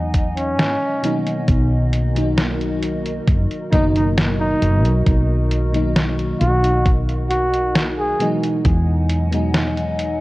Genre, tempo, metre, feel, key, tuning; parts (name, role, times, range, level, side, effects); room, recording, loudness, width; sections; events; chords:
vaporwave; 67 BPM; 4/4; straight; B major; A4 = 440 Hz
FM electric piano with soft pad layer; accompaniment; 0.0-10.2 s; B2 to D#4; -23 LUFS; equal; analog chorus, tape echo
warbly tape-like pad; sustained chords; 0.0-10.2 s; F#3 to G#5; -28 LUFS; equal; chorus, built-in reverb
woody fretless electric bass; bass; 0.0-10.2 s; F#1 to G#2; -20 LUFS; equal; tube saturation, wide subtle chorus
detuned 8-bit digital drum machine; drums; 0.1-10.2 s; hi-hat, snare drum; -22 LUFS; equal
electronic kick drum; drums; 0.1-8.8 s; -17 LUFS; equal
mellow flugelhorn; melody; 0.4-8.3 s; C#4 to G#4; -23 LUFS; equal; vintage 12-bit sampler grit, tape echo
light reverb, digital ambience; worn, warbling old tape, cassette tape, warbly pitch drift; -16 LUFS; side -19 dB against mid
0.0-10.2 A section
0.0 Emaj9; 1.5 Bmaj7; 8.2 Emaj9